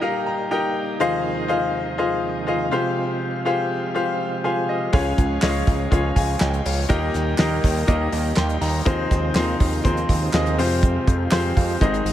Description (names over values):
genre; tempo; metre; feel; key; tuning
piano-driven pop; 122 BPM; 4/4; straight; Ab major; A4 = 441 Hz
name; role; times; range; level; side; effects
bright upright piano; accompaniment; 0.0-12.1 s; Ab2 to C6; -22 LUFS; left 2 dB; none
overdriven tonewheel organ; sustained chords; 0.0-12.1 s; Eb2 to F4; -30 LUFS; right 4 dB; chorus vibrato, slow rotary speaker
fat analog bass; bass; 4.9-12.1 s; Ab1 to F2; -23 LUFS; right 1 dB; none
damped 70s drum kit; drums; 4.9-12.1 s; handclaps, hi-hat, kick drum, snare drum; -21 LUFS; equal; none
room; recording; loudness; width
light reverb, small room ambience; none; -19 LUFS; side -12 dB against mid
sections
0.0-12.1 A section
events
upright piano fill 0.0-1.0, 4.2-4.9, 7.9-8.9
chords
0.0 Eb; 1.0 Ab6/Eb; 2.7 Fmadd9; 4.9 Db; 6.9 Eb; 8.9 Ab6/Eb; 10.6 Fmadd9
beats
0.02 0.51 | 1.00 1.50 1.99 2.48 | 2.97 3.46 3.95 4.44 | 4.93 5.43 5.92 6.41 | 6.90 7.39 7.88 8.37 | 8.86 9.36 9.85 10.34 | 10.83 11.32 11.81